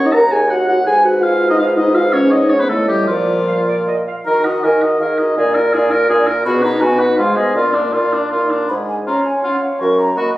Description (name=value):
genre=quick classical-period movement for wind quintet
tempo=163 BPM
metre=3/4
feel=rubato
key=unclear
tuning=A4 = 440 Hz
part: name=warm oboe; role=second line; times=0.0-10.3 s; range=D4 to Bb5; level=-18 LUFS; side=equal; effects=none
part: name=clear clarinet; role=accompaniment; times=0.0-10.4 s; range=F4 to F#5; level=-23 LUFS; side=right 2 dB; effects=none
part: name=dark French horn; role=accompaniment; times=0.0-10.3 s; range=F3 to Bb4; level=-19 LUFS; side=equal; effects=none
part: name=warm bassoon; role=bass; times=0.0-10.1 s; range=D#2 to Eb3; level=-17 LUFS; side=equal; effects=none
part: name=mellow hollow silver concert flute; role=melody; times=0.1-10.4 s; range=F4 to C#6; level=-23 LUFS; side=left 2 dB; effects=none
room=wet recital hall reverb, RT60 1.8 s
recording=recorded on a phone in the room, club reverb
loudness=-12 LUFS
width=side -16 dB against mid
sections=0.0-4.3 A section; 4.3-10.4 B section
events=none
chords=0.0 B/D# (rootless); 0.9 Abm; 1.9 Db9/Ab; 2.7 Gsus2/A; 3.1 Bb; 4.3 Ebm; 5.4 Bb7; 6.5 B; 7.2 Fdim/Ab; 7.5 Bb; 8.7 C#/G#; 9.8 F#